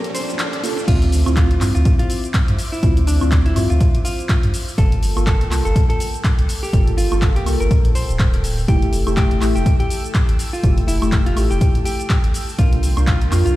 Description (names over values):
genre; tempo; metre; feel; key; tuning
deep house; 123 BPM; 4/4; swing 58% on 16ths; D minor; A4 = 440 Hz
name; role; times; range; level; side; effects
hollow-body jazz guitar; melody; 0.0-13.6 s; D4 to C5; -27 LUFS; equal; vintage 12-bit sampler grit, digital delay
warm analog pad; sustained chords; 0.0-13.6 s; F3 to E6; -35 LUFS; left 1 dB; chorus, sidechain pumping
deep mellow chord stab; stabs; 0.0-13.6 s; A3 to E5; -25 LUFS; left 1 dB; chorus, phaser, sidechain pumping
punchy analog drum machine; drums; 0.0-13.5 s; cabasa, crash cymbal, handclaps, hi-hat, woodblock; -27 LUFS; equal; none
riser and swell; sound effects; 0.0-0.9 s; none; -28 LUFS; equal; none
warm sub bass; bass; 0.9-13.5 s; D1 to G2; -18 LUFS; equal; sidechain pumping
electronic kick drum; drums; 0.9-13.2 s; none; -17 LUFS; equal; none
room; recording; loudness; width
digital ambience; played on a big sound system in a bare room, stone room reverb; -15 LUFS; side -16 dB against mid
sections
0.9-13.6 A section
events
riser 0.0-0.9; swell 0.0-0.9; drop 0.9-13.6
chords
0.0 Gm9; 0.9 Dm9; 4.8 Gm9; 8.7 Fmaj9; 12.6 C7sus4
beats
0.39 | 0.88 1.37 1.85 2.34 | 2.83 3.32 3.81 4.29 | 4.78 5.27 5.76 6.24 | 6.73 7.22 7.71 8.20 | 8.68 9.17 9.66 10.15 | 10.63 11.12 11.61 12.10 | 12.59 13.07 13.56